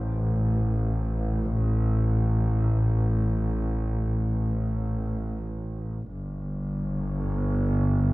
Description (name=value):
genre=ambient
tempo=free time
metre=none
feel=none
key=unclear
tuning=A4 = 442 Hz
part: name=clear studio double bass section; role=bass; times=0.0-8.1 s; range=G1 to A1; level=-24 LUFS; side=equal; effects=none
room=small room ambience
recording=none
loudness=-24 LUFS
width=side -20 dB against mid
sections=0.0-8.1 A section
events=none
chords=none